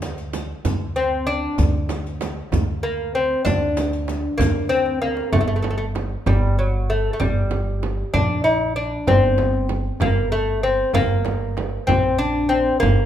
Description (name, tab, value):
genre	Persian modal ensemble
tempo	64 BPM (dotted quarters)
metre	6/8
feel	straight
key	G avaz esfahan from 5.3 s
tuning	A4 = 440 Hz
part	upright bass	bass	0.0-13.1 s	G1 to D2	-24 LUFS	right 1 dB	none
part	frame drum	percussion	0.0-13.0 s	none	-28 LUFS	right 6 dB	none
part	riq	percussion	0.0-4.8 s	none	-34 LUFS	left 2 dB	none
part	tombak	percussion	0.0-13.0 s	none	-26 LUFS	left 1 dB	none
part	lute	melody	1.0-13.1 s	F#3 to E4-50c	-21 LUFS	left 2 dB	none
room	moderate recital hall reverb, RT60 1.3 s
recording	minimal, uncompressed stereo recording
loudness	-18 LUFS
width	side -10 dB against mid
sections	0.0-5.3 A section; 5.3-13.1 B section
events	drum fill 4.7-5.3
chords	none